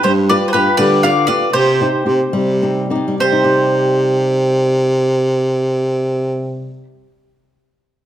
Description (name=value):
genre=italian folk, Italian serenade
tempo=65-82 BPM (dotted quarters)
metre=6/8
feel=rubato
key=C harmonic minor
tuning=A4 = 440 Hz
part: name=bowl-back mandolin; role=melody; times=0.0-6.8 s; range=B4 to F5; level=-17 LUFS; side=equal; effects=none
part: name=bowl-back mandolin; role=second line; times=0.0-6.8 s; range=G4 to D5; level=-22 LUFS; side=right 2 dB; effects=none
part: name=flamenco guitar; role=accompaniment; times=0.0-7.1 s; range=C3 to B4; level=-20 LUFS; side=left 1 dB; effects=none
part: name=warm baritone saxophone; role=bass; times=0.0-6.8 s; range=G2 to G3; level=-16 LUFS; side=equal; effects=none
room=light reverb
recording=none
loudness=-13 LUFS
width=side -11 dB against mid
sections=0.0-3.2 A section; 3.2-6.8 B section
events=slowing down 0.0-3.2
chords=0.0 G7; 1.5 Cm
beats=| 0.04 0.78 | 1.53 2.33 | 3.20 4.12 | 5.01 5.92